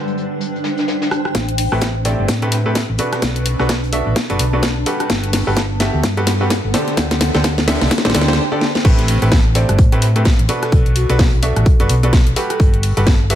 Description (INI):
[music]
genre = piano house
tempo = 128 BPM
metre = 4/4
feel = swing 59% on 16ths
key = A dorian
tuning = A4 = 440 Hz
[part]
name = bright baby grand piano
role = riff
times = 0.0-13.4 s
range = A2 to E5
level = -21 LUFS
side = right 1 dB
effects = sidechain pumping, low-pass filter, ping-pong delay
[part]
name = granular cloud pad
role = texture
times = 0.0-8.4 s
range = G3 to A5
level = -24 LUFS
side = equal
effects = built-in reverb, sidechain pumping
[part]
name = vintage brush drum kit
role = drums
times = 0.1-13.4 s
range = hi-hat, snare drum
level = -32 LUFS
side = left 2 dB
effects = none
[part]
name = house drum kit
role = drums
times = 1.1-13.4 s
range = crash cymbal, hi-hat, rim click, snare drum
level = -20 LUFS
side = left 1 dB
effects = none
[part]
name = hollow-body short-scale fingered electric bass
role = bass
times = 1.3-13.4 s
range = F#1 to A2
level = -18 LUFS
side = equal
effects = sidechain pumping, low-pass filter
[part]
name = electronic kick drum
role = drums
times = 1.3-13.2 s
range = none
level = -14 LUFS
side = equal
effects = high-pass filter on kick, high-pass filter on room
[part]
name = marimba with soft mallets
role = melody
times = 9.6-13.4 s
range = F#4 to C5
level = -26 LUFS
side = equal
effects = ping-pong delay
[sound]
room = light reverb, small room ambience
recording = none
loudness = -13 LUFS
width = side -11 dB against mid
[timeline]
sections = 0.0-1.3 A section; 1.3-8.8 B section; 8.8-13.4 C section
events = build-up 1.3-8.8; drum fill 1.3-8.4, 8.6; break 8.4-8.8; drop 8.8-13.4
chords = 0.0 D7sus4; 1.3 Am9; 3.0 Bm7; 4.9 Gmaj9; 7.0 D7sus4; 8.8 Am9; 10.5 Bm7; 12.4 Gmaj9